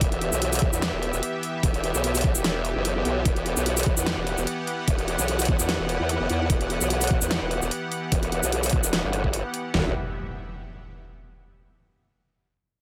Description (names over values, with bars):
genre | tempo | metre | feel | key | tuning
heavy wobble dubstep | 148 BPM | 4/4 | swing 54% on 16ths, half-time | E minor | A4 = 438 Hz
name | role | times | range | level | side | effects
supersaw pad | sustained chords | 0.0-9.9 s | E3 to F#5 | -32 LUFS | equal | vintage 12-bit sampler grit, sidechain pumping
formant-sweep wobble bass | bass | 0.0-9.9 s | E1 to E2 | -28 LUFS | equal | chorus, overdrive
dubstep drum kit | drums | 0.0-9.8 s | kick drum, snare drum, toms | -26 LUFS | equal | overdrive
dubstep drum kit | drums | 0.0-9.6 s | hi-hat, shaker, snare drum | -30 LUFS | equal | overdrive
impact | sound effects | 9.8-11.4 s | none | -39 LUFS | equal | none
room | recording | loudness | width
digital ambience | none | -25 LUFS | mono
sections
0.0-9.7 A section; 9.7-11.4 B section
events
none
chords
0.0 Em